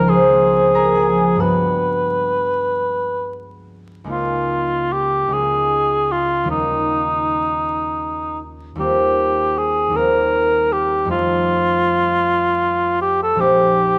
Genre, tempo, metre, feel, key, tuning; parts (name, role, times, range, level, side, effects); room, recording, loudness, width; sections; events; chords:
classical, impressionist duo for cor anglais and harp; 43-53 BPM (dotted quarters); 6/8; rubato; Db lydian; A4 = 442 Hz
dark cor anglais; melody; 0.0-14.0 s; Eb4 to B4; -19 LUFS; equal
concert harp; accompaniment; 0.0-14.0 s; Bb1 to F6; -22 LUFS; equal
moderate recital hall reverb, RT60 1.5 s; close, detailed microphones, vinyl crackle; -18 LUFS; mono
0.0-4.1 A section; 4.1-14.0 B section
0.0 Db69; 1.4 Gmaj7; 4.1 Db69; 6.5 Eb9; 8.8 Eb69; 11.1 F9; 13.4 Bb9sus4